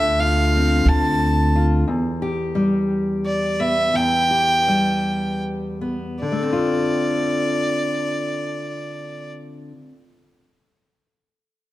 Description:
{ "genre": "acoustic folk duo or small band", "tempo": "49-60 BPM (dotted quarters)", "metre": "6/8", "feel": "straight", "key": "D dorian", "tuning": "A4 = 440 Hz", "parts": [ { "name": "clear fiddle", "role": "melody", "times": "0.0-9.3 s", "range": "D5 to A5", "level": "-21 LUFS", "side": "right 1 dB", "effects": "none" }, { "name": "fingerpicked steel-string acoustic guitar", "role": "accompaniment", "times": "0.0-10.0 s", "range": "E2 to G4", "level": "-22 LUFS", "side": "left 2 dB", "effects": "none" }, { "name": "upright bass", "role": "bass", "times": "0.0-1.8 s", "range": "D2", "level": "-19 LUFS", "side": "equal", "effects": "none" } ], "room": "wet large studio reverb, RT60 1.3 s", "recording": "dark, warm production", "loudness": "-18 LUFS", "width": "side -15 dB against mid", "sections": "0.0-6.2 A section; 6.2-11.1 B section", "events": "slowing down 1.9-6.2", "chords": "0.0 Dm7; 1.9 Em; 6.2 Dm7" }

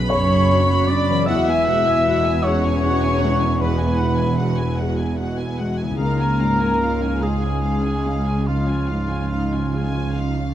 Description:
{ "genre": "cinematic, emotional film score for orchestra", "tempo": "50 BPM (dotted quarters)", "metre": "6/8", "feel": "uneven beats, rubato", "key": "unclear", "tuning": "A4 = 440 Hz", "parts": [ { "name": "warm studio violin section", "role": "melody", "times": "0.0-10.5 s", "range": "E#5 to B5", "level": "-31 LUFS", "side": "left 2 dB", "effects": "none" }, { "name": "dark studio violin section", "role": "second line", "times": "0.0-10.5 s", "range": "E#4 to E5", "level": "-32 LUFS", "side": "left 2 dB", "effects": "none" }, { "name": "dark studio viola section", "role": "accompaniment", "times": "0.0-10.5 s", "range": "C#3 to F#4", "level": "-31 LUFS", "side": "right 2 dB", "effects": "none" }, { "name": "felt-muted upright piano", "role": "accompaniment", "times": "0.0-10.5 s", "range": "B1 to C#5", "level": "-27 LUFS", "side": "left 2 dB", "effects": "none" }, { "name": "concert harp", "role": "arpeggios", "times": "0.0-9.9 s", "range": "C#3 to G#4", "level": "-32 LUFS", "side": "left 8 dB", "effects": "none" }, { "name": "concert flute", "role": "second line", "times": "0.1-10.5 s", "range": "E#5 to E6", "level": "-30 LUFS", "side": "left 2 dB", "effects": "none" }, { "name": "dark clarinet", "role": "second line", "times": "0.1-10.5 s", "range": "E#4 to E5", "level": "-29 LUFS", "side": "left 1 dB", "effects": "none" }, { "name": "mellow cor anglais", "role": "second line", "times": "0.1-10.5 s", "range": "E#4 to E5", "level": "-25 LUFS", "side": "right 2 dB", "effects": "none" }, { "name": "mellow French horn section", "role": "sustained chords", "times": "0.1-10.5 s", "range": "E#3 to D5", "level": "-28 LUFS", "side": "left 6 dB", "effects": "none" }, { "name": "dark studio cello section", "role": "bass", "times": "0.1-10.5 s", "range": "C#2 to F#2", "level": "-25 LUFS", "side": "right 1 dB", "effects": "none" }, { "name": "warm symphonic double bass section", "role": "bass", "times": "0.1-10.5 s", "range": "E1 to C#2", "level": "-23 LUFS", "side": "right 2 dB", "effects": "none" } ], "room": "moderate scoring stage reverb, RT60 1.6 s", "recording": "none", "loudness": "-17 LUFS", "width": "side -11 dB against mid", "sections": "0.0-10.5 A section", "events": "none", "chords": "0.0 Bmadd9; 1.3 Eadd9; 6.0 C#add9" }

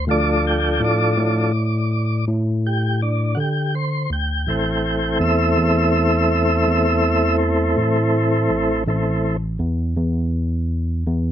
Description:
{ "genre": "slow blues", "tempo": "55 BPM (dotted quarters)", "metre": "12/8", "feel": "straight", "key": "A minor", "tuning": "A4 = 441 Hz", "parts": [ { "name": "tonewheel organ", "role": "sustained chords", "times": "0.0-9.4 s", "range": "E3 to G5", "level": "-19 LUFS", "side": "equal", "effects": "slow rotary speaker" }, { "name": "tine electric piano", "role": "bass", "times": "0.0-11.3 s", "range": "A1 to D3", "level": "-20 LUFS", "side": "equal", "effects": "medium stereo tremolo" } ], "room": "little or no reverb", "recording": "none", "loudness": "-17 LUFS", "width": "side -10 dB against mid", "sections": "0.0-11.3 A section", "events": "tonewheel organ solo 0.0-11.3", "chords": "0.0 Dm; 4.5 Am" }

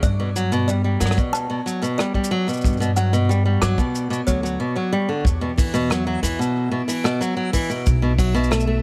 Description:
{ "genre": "folktronica", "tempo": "92 BPM", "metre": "4/4", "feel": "straight", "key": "unclear", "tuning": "A4 = 440 Hz", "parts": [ { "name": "kalimba", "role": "second line", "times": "0.0-4.5 s", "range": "C#5 to D6", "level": "-33 LUFS", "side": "equal", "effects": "digital delay" }, { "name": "flamenco guitar", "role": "arpeggios", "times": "0.0-8.8 s", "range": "B2 to A3", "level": "-24 LUFS", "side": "equal", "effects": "digital delay" }, { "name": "upright bass", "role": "bass", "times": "0.0-8.8 s", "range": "B1 to G2", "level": "-24 LUFS", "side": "equal", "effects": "none" }, { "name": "kick drum", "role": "drums", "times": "0.0-8.3 s", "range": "none", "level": "-23 LUFS", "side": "equal", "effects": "none" }, { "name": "soft brush drum kit", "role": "drums", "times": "0.0-8.7 s", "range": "hi-hat, rim click, shaker", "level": "-31 LUFS", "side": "equal", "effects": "none" }, { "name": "backwards swelling texture", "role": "texture", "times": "0.0-8.8 s", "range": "D5 to D7", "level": "-41 LUFS", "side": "equal", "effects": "built-in reverb" } ], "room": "small room ambience", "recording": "vinyl crackle", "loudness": "-21 LUFS", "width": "mono", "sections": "0.0-5.3 A section; 5.3-8.8 B section", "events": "none", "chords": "0.0 Gmaj7; 5.3 Esus2; 7.9 Bm7" }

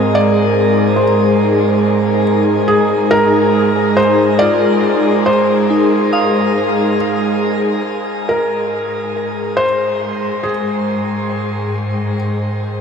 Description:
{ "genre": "ambient", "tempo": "70 BPM", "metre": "3/4", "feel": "straight", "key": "Ab lydian", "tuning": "A4 = 440 Hz", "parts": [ { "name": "felt-muted upright piano", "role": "melody", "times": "0.0-12.1 s", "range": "Ab4 to Eb5", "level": "-17 LUFS", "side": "left 1 dB", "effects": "tape echo" }, { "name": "airy breathy pad", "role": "sustained chords", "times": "0.0-12.8 s", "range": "Ab3 to G5", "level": "-15 LUFS", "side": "equal", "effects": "chorus" }, { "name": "soft synth bell", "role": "arpeggios", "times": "0.0-9.1 s", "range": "C4 to Eb6", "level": "-24 LUFS", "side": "left 1 dB", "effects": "chorus, phaser, tape echo" }, { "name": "clear chamber cello section", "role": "bass", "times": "0.0-12.8 s", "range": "Ab2", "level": "-24 LUFS", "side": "equal", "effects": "none" }, { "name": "overtone-sweeping drone", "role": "drone", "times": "8.7-12.8 s", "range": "Ab3", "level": "-26 LUFS", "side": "left 2 dB", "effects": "chorus, built-in reverb" } ], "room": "wet shimmer reverb, RT60 8.5 s", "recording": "none", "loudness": "-12 LUFS", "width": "side -6 dB against mid", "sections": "0.0-7.9 A section; 7.9-12.8 B section", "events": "fade-out on cello section 0.0-7.9; filter sweep on analog synth pad 0.0-7.9", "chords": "0.0 Abmaj9" }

